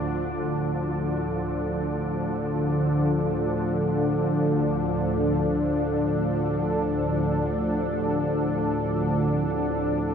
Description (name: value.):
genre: dark ambient drone.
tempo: free time.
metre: none.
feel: none.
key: D minor.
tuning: A4 = 441 Hz.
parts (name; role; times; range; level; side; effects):
sweeping resonant pad; sustained chords; 0.0-10.1 s; A2 to A4; -25 LUFS; equal; chorus.
dark detuned synth bell; arpeggios; 0.0-10.1 s; C4 to G4; -42 LUFS; right 2 dB; none.
organ-like drone; drone; 0.0-10.1 s; D2 to D3; -27 LUFS; equal; ensemble chorus, built-in reverb.
wind-like tuned noise texture; texture; 0.0-3.1 s; F3 to F4; -38 LUFS; left 1 dB; none.
room: wet huge ambient reverb, RT60 7.8 s.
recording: dark, warm production.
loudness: -23 LUFS.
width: side -7 dB against mid.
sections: 0.0-3.1 A section; 3.1-10.1 B section.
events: none.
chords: 0.0 Dm.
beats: free time.